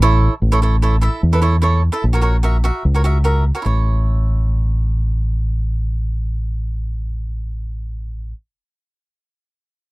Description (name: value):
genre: calypso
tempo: 148 BPM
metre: 4/4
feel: straight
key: A major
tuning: A4 = 439 Hz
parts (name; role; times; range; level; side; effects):
- cavaquinho; accompaniment; 0.0-8.3 s; E4 to E5; -20 LUFS; right 3 dB; none
- deep dub fingered electric bass; bass; 0.0-8.3 s; A1 to E2; -16 LUFS; equal; none
room: little or no reverb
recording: dry, close 1970s-style studio recording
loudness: -15 LUFS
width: side -21 dB against mid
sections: 0.4-3.7 A section; 3.7-6.9 B section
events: none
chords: 0.4 A; 2.0 F#7/A#; 3.7 A